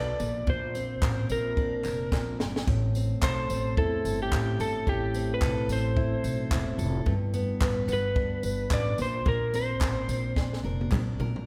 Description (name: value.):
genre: acoustic pop.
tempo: 109 BPM.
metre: 4/4.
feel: swing 60% on 16ths.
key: unclear.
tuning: A4 = 441 Hz.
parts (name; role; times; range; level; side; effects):
electric slide guitar; melody; 0.0-10.6 s; G4 to D5; -33 LUFS; equal; none.
picked steel-string acoustic guitar; accompaniment; 0.0-11.5 s; G2 to B4; -34 LUFS; equal; none.
upright bass; bass; 0.0-11.4 s; E1 to E2; -34 LUFS; equal; none.
compact cocktail drum kit; drums; 0.2-11.5 s; handclaps, kick drum, snare drum, splash cymbal, tambourine, toms; -32 LUFS; equal; none.
group handclap; percussion; 1.0-11.1 s; none; -46 LUFS; equal; none.
room: moderate concert hall reverb, RT60 1.9 s.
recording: recorded in a church or concert hall.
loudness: -28 LUFS.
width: mono.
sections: 0.0-11.5 A section.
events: drum fill 2.1-2.7, 10.4-11.5.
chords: 0.2 Bbadd9; 2.7 Am; 7.1 G; 9.0 Bbadd9.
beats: | 0.47 1.02 1.57 2.12 | 2.67 3.22 3.77 4.32 | 4.87 5.42 5.97 6.52 | 7.07 7.62 8.16 8.71 | 9.26 9.81 10.36 10.91.